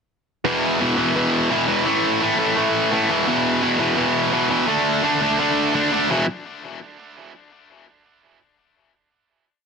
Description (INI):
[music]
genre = punk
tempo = 170 BPM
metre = 4/4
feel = straight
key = unclear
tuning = A4 = 440 Hz
[part]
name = overdriven electric guitar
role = solo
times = 0.4-6.2 s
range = E2 to D4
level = -18 LUFS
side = equal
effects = none
[sound]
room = moderate small room reverb, RT60 0.5 s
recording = dense, heavily limited modern master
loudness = -17 LUFS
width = side -5 dB against mid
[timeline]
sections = 0.4-6.1 verse; 6.1-7.5 final chord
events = none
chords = 0.4 E5; 1.9 A5; 3.1 E5; 4.7 D5; 6.1 E5